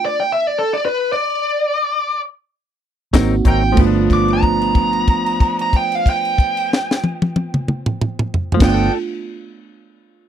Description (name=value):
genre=straight-eighth soul blues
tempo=92-114 BPM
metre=4/4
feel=swing 56% on 16ths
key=G mixolydian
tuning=A4 = 441 Hz
part: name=smooth overdriven lead guitar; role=melody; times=0.0-8.9 s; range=A4 to D6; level=-18 LUFS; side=right 1 dB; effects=none
part: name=reed electric piano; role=accompaniment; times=3.1-8.9 s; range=A3 to Gb4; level=-20 LUFS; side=right 6 dB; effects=spring reverb
part: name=direct-recorded clean electric guitar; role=stabs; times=3.1-9.0 s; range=F3 to Bb4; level=-25 LUFS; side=left 9 dB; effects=vibrato effect
part: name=vintage muted fingered electric bass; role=bass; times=3.1-8.9 s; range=G1 to Ab1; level=-20 LUFS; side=left 1 dB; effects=none
part: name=tight funk drum kit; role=drums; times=3.1-8.8 s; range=crash cymbal, hi-hat, kick drum, snare drum, tambourine, toms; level=-17 LUFS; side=left 1 dB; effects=none
room=little or no reverb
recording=dry, close 1970s-style studio recording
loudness=-15 LUFS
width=side -9 dB against mid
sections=0.0-3.8 A section; 3.8-9.0 B section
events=slowing down 0.0-3.8; stop 0.0-3.1; held note 3.8-8.6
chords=0.0 N.C.; 3.1 Ab9; 3.8 G9